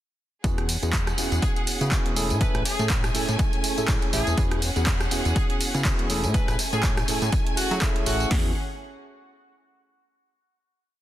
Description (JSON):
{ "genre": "filtered disco house", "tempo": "122 BPM", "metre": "4/4", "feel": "swing 56% on 16ths", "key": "E major", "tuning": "A4 = 440 Hz", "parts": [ { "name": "tine electric piano", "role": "accompaniment", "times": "0.4-8.5 s", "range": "A3 to A4", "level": "-30 LUFS", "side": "right 1 dB", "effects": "phaser, sidechain pumping" }, { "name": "rich symphonic violin section", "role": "sustained chords", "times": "0.4-8.5 s", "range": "A3 to G#5", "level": "-33 LUFS", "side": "equal", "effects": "sidechain pumping" }, { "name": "fat analog bass", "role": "bass", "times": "0.4-8.5 s", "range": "E1 to F#3", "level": "-27 LUFS", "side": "equal", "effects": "sidechain pumping" }, { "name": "punchy analog drum machine", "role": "drums", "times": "0.4-8.4 s", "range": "hi-hat, kick drum, snare drum", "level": "-25 LUFS", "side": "equal", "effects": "overdrive" }, { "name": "punchy analog drum machine", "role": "drums", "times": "0.4-8.3 s", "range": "handclaps, hi-hat, rim click, tambourine", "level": "-28 LUFS", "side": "right 1 dB", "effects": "overdrive, sidechain pumping on hats, sidechain pumping on perc" }, { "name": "bright horn section", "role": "melody", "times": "1.4-8.3 s", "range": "F#4 to B4", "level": "-33 LUFS", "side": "left 1 dB", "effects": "vintage 12-bit sampler grit, sidechain pumping, dub echo" } ], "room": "little or no reverb", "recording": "dense, heavily limited modern master", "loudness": "-21 LUFS", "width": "side -13 dB against mid", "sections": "0.4-8.3 drop; 8.3-10.3 final chord", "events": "drop 0.4-8.3", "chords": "0.4 E69; 2.2 Amaj7; 4.4 E69; 6.1 Amaj7; 8.3 E69", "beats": "| 0.44 0.93 1.43 1.92 | 2.41 2.90 3.39 3.88 | 4.38 4.87 5.36 5.85 | 6.34 6.83 7.33 7.82 | 8.31" }